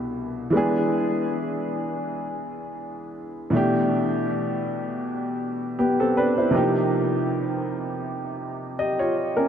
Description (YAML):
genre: R&B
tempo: 80 BPM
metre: 4/4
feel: swing 56% on 16ths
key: unclear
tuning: A4 = 437 Hz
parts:
  - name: warm upright piano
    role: solo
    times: 0.0-9.5 s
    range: C2 to Eb5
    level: -22 LUFS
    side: equal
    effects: tape echo
room: wet huge ambient reverb, RT60 4.1 s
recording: dreamy mix soaked in reverb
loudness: -22 LUFS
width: side -8 dB against mid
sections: 0.0-9.5 A section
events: none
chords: 0.0 C6; 0.5 E7; 3.5 Asus2; 6.5 Ebadd9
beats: | 0.53 1.28 2.03 2.78 | 3.53 4.28 5.03 5.78 | 6.53 7.28 8.03 8.78